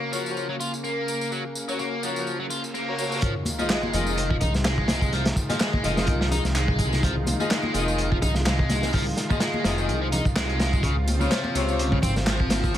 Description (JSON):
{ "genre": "breakbeat, breaks", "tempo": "126 BPM", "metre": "4/4", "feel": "swing 55% on 16ths", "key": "F phrygian", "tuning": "A4 = 440 Hz", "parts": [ { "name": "lush unison pad", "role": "sustained chords", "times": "0.0-12.8 s", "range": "C3 to F4", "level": "-32 LUFS", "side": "equal", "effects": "chorus, sidechain pumping" }, { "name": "biting overdriven guitar", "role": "riff", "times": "0.0-12.8 s", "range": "C3 to F4", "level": "-29 LUFS", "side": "equal", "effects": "digital delay" }, { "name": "dark chamber string section", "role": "stabs", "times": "0.1-11.7 s", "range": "F4 to Eb5", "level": "-31 LUFS", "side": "left 3 dB", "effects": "digital delay" }, { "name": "garage drum kit", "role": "drums", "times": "0.1-12.8 s", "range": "handclaps, ride cymbal, tambourine", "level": "-34 LUFS", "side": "equal", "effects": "none" }, { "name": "reverse cymbal and sub drop", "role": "sound effects", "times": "2.5-5.1 s", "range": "none", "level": "-37 LUFS", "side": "right 1 dB", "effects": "none" }, { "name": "crunchy breakbeat drum kit", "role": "drums", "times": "3.2-12.8 s", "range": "hi-hat, kick drum, snare drum", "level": "-25 LUFS", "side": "equal", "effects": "none" }, { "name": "congas", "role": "percussion", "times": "3.5-12.6 s", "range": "none", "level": "-33 LUFS", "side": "left 2 dB", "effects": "none" }, { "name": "detuned saw bass", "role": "bass", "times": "3.9-12.8 s", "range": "F1 to Db2", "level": "-26 LUFS", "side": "equal", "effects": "tube saturation" } ], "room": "small room ambience", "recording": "vinyl crackle", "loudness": "-22 LUFS", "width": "side -11 dB against mid", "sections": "0.0-3.2 A section; 3.2-12.8 B section", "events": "filter sweep on analog synth pad 0.0-3.2; reverse cymbal 2.5-3.2; drop 3.2-12.8; impact 3.2-5.1", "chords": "0.0 Gb; 3.2 Fm7; 10.8 Dbmaj7" }